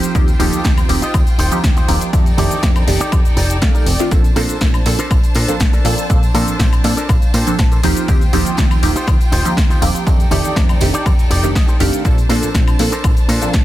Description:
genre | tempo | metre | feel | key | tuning
filtered disco house | 121 BPM | 4/4 | straight | Bb major | A4 = 440 Hz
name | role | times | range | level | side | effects
funky polysynth comp | accompaniment | 0.0-13.5 s | Eb3 to D5 | -20 LUFS | right 2 dB | chorus, phaser, sidechain pumping
rich studio violin section | sustained chords | 0.0-13.6 s | D4 to A5 | -26 LUFS | right 1 dB | sidechain pumping
electric guitar with an envelope filter | riff | 0.0-13.5 s | D4 to Bb5 | -24 LUFS | equal | sidechain pumping
house drum kit | drums | 0.0-13.6 s | hi-hat, shaker, snare drum, woodblock | -23 LUFS | left 2 dB | sidechain pumping on hats, studio reverb, sidechain pumping on perc
tambourine | percussion | 0.0-13.6 s | none | -32 LUFS | right 1 dB | sidechain pumping on perc
plucky analog bass | bass | 0.1-13.6 s | Eb1 to Bb2 | -20 LUFS | equal | sidechain pumping
electronic kick drum | drums | 0.1-13.6 s | none | -14 LUFS | equal | studio reverb
room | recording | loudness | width
little or no reverb | dense, heavily limited modern master | -12 LUFS | side -14 dB against mid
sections
0.0-13.6 A section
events
clean electric guitar fill 3.1-4.1, 6.6-8.1, 11.3-12.1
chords
0.0 Eb69; 2.1 F13; 4.1 Bbmaj9; 7.8 Eb69; 10.1 F13; 12.1 Bbmaj9

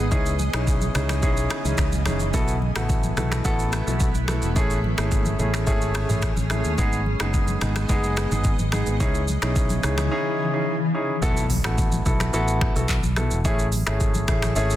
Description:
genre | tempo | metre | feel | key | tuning
afrobeats | 108 BPM | 4/4 | straight | unclear | A4 = 440 Hz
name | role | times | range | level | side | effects
warm grand piano | accompaniment | 0.0-14.8 s | G#3 to A4 | -26 LUFS | equal | none
granular cloud pad | sustained chords | 0.0-11.2 s | C#3 to D#5 | -30 LUFS | left 1 dB | built-in reverb
fingered electric bass | bass | 0.0-14.8 s | E1 to D#2 | -24 LUFS | equal | none
afro-pop drum kit | drums | 0.1-14.8 s | finger snaps, handclaps, hi-hat, kick drum, rim click, shaker, toms | -25 LUFS | equal | soft clipping on snare
congas | percussion | 0.1-14.5 s | none | -33 LUFS | equal | none
impact | sound effects | 11.3-13.4 s | none | -32 LUFS | equal | none
room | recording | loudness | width
light reverb, digital ambience | dense, heavily limited modern master | -20 LUFS | side -13 dB against mid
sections
0.0-2.3 A section; 2.3-11.2 B section; 11.2-14.8 C section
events
impact 11.2-13.4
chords
0.1 C#madd9; 2.3 B7sus4; 4.6 Amaj7; 6.8 G#m; 9.0 C#madd9; 11.2 B7sus4; 13.4 Amaj7

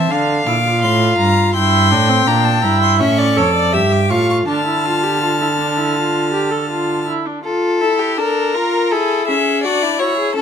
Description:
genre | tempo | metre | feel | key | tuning
classical, baroque-style fugue for string quartet | 82 BPM | 4/4 | straight | D minor | A4 = 441 Hz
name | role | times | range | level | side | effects
rich violin | melody | 0.0-10.4 s | G4 to F6 | -20 LUFS | left 5 dB | none
warm violin | second line | 0.0-10.4 s | E4 to A5 | -19 LUFS | left 4 dB | none
warm viola | accompaniment | 0.0-10.4 s | C4 to A4 | -18 LUFS | right 2 dB | none
rich cello | bass | 0.0-7.0 s | F2 to D3 | -18 LUFS | right 3 dB | none
room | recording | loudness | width
moderate stone room reverb, RT60 1.2 s | close, detailed microphones | -13 LUFS | side -8 dB against mid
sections
0.0-7.5 A section; 7.5-10.4 B section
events
none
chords
0.1 Dm; 1.6 Em7b5/G; 3.0 A7; 4.5 Dm; 8.9 E7

